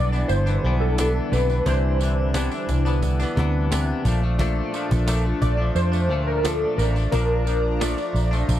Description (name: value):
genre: indie pop, bedroom pop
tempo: 88 BPM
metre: 4/4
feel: straight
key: C major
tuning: A4 = 440 Hz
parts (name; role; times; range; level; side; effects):
- warbly lo-fi synth keys; melody; 0.0-8.5 s; A4 to D5; -26 LUFS; equal; ensemble chorus, slapback echo
- direct-recorded clean electric guitar; accompaniment; 0.0-8.6 s; Bb2 to D4; -27 LUFS; left 2 dB; wide subtle chorus, vibrato effect
- phased analog pad; sustained chords; 0.0-8.6 s; D3 to Bb5; -31 LUFS; equal; phaser, chorus
- vintage muted fingered electric bass; bass; 0.0-8.6 s; G1 to F2; -22 LUFS; equal; none
- tambourine; percussion; 0.1-8.6 s; none; -38 LUFS; right 15 dB; none
- cajon; drums; 0.3-8.6 s; none; -26 LUFS; equal; none
room: small room ambience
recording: dry, close 1970s-style studio recording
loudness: -19 LUFS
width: side -12 dB against mid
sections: 0.0-8.6 A section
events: none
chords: 0.0 Cmaj9; 4.1 Bbmaj7